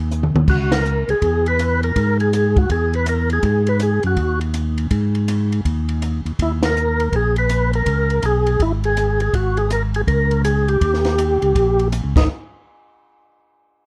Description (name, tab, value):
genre	soul jazz organ trio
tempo	163 BPM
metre	4/4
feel	swing 64% on 8ths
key	G# minor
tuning	A4 = 440 Hz
part	tonewheel organ	bass	0.0-12.3 s	G#1 to G#2	-21 LUFS	equal	overdrive, chorus vibrato, slow rotary speaker
part	compact cocktail drum kit	drums	0.1-12.2 s	crash cymbal, hi-hat, kick drum, ride cymbal, snare drum, toms	-23 LUFS	equal	none
part	percussive tonewheel organ	melody	0.5-12.3 s	D#4 to B4	-22 LUFS	equal	slow rotary speaker, overdrive, chorus vibrato
room	light reverb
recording	dark, warm production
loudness	-18 LUFS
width	mono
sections	0.0-12.3 A section; 12.3-13.8 B section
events	drum fill 0.1-0.5; band accent 0.7, 6.6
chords	0.5 C#m7; 3.4 G#5; 6.4 D#5; 7.9 C#5; 9.3 F#add9/G#; 10.1 Gdim/Db; 10.8 D#7; 12.1 G#5; 12.3 N.C.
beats	0.11 | 0.48 0.85 1.22 1.59 | 1.96 2.32 2.69 3.06 | 3.43 3.80 4.17 4.54 | 4.91 5.28 5.64 6.01 | 6.38 6.75 7.12 7.49 | 7.86 8.23 8.60 8.96 | 9.33 9.70 10.07 10.44 | 10.81 11.18 11.55 11.92 | 12.29